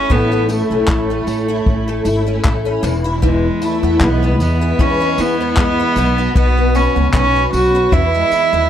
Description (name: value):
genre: acoustic pop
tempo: 77 BPM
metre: 4/4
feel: swing 55% on 16ths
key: E major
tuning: A4 = 441 Hz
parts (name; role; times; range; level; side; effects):
- warm cello; melody; 0.0-8.7 s; G#3 to F#4; -17 LUFS; right 2 dB; plate reverb
- picked twelve-string acoustic guitar; accompaniment; 0.0-8.7 s; E2 to F#4; -18 LUFS; left 2 dB; ensemble chorus
- upright bass; bass; 0.0-8.7 s; E1 to E3; -19 LUFS; equal; none
- vintage brush drum kit; drums; 0.1-8.5 s; handclaps, kick drum, tambourine; -18 LUFS; left 1 dB; none
room: light reverb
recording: none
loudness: -13 LUFS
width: side -10 dB against mid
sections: 0.0-8.7 A section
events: none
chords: 0.0 A; 2.8 E; 6.0 Bsus2; 7.9 E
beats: | 0.10 0.88 1.66 2.44 | 3.22 4.01 4.79 5.57 | 6.35 7.14 7.92